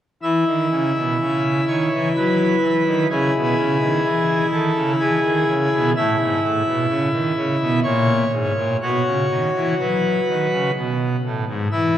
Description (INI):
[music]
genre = classical, chorale-style piece for pipe organ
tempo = 63 BPM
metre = 3/4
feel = rubato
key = E major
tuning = A4 = 439 Hz
[part]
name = pipe organ, full organ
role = solo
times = 0.2-12.0 s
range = G#2 to E5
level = -17 LUFS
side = equal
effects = none
[sound]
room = wet church reverb, RT60 3.5 s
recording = worn, warbling old tape, cassette tape, warbly pitch drift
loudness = -17 LUFS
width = side -11 dB against mid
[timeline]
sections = 0.2-12.0 A section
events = none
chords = 0.2 E5; 3.1 C#m; 5.9 A; 7.8 G#sus24; 8.8 Bsus4; 10.7 G#m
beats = | 0.24 1.21 2.17 | 3.10 4.04 4.98 | 5.94 6.88 7.83 | 8.80 9.76 10.73 | 11.71